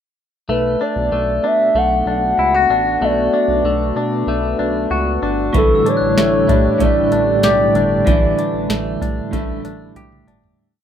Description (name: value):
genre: dream pop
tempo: 95 BPM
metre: 4/4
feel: straight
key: unclear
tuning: A4 = 440 Hz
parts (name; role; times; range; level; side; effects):
- warbly nostalgic lead; melody; 0.5-10.0 s; A4 to F#5; -17 LUFS; equal; chorus, tape echo
- warm analog pad; sustained chords; 0.5-10.6 s; A3 to B4; -25 LUFS; left 2 dB; chorus
- clean electric guitar; arpeggios; 0.5-10.8 s; E3 to G4; -21 LUFS; left 4 dB; wide subtle chorus, tape echo
- chorused synth bass; bass; 0.5-10.6 s; G1 to B2; -24 LUFS; equal; none
- electric guitar at the edge of break-up; accompaniment; 5.5-10.8 s; A2 to E4; -20 LUFS; right 3 dB; tremolo, wide subtle chorus
- booming analog drum machine; drums; 5.5-10.6 s; hi-hat, kick drum, snare drum, toms; -18 LUFS; equal; none
- glockenspiel with hard plastic mallets; texture; 5.5-8.0 s; C#6 to F#6; -30 LUFS; right 1 dB; stereo widening, tape echo
room: digital ambience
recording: rough home demo mix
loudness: -14 LUFS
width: side -9 dB against mid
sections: 0.5-10.6 verse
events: fade-out 8.1-10.6; drum fill 10.0-10.6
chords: 0.5 Bm7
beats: | 0.49 1.12 1.75 2.38 | 3.02 3.65 4.28 4.91 | 5.54 6.17 6.81 7.44 | 8.07 8.70 9.33 9.96